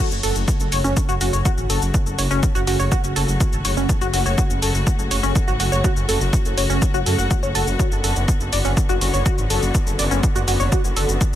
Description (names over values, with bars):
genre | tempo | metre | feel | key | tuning
melodic techno | 123 BPM | 4/4 | straight | F# minor | A4 = 440 Hz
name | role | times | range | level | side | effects
warm studio string section | sustained chords | 0.0-11.4 s | C#3 to F#4 | -26 LUFS | left 2 dB | sidechain pumping
tight sequenced synth | arpeggios | 0.0-11.1 s | C#4 to F#5 | -24 LUFS | equal | chorus, sidechain pumping, digital delay
dark detuned saw bass | bass | 0.1-11.4 s | F#1 to F#2 | -22 LUFS | equal | sidechain pumping
electronic shaker and hi-hat | drums | 0.1-11.3 s | none | -26 LUFS | equal | overdrive, sidechain pumping on hats, sidechain pumping on cymbals, sidechain pumping on perc
electronic kick drum | drums | 0.5-11.3 s | none | -19 LUFS | equal | overdrive
room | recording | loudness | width
little or no reverb | none | -17 LUFS | side -12 dB against mid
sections
0.0-11.4 A section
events
none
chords
0.0 F#m; 7.8 Bm/F#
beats
0.48 0.97 1.45 | 1.94 2.43 2.92 3.40 | 3.89 4.38 4.87 5.36 | 5.84 6.33 6.82 7.31 | 7.79 8.28 8.77 9.26 | 9.75 10.23 10.72 11.21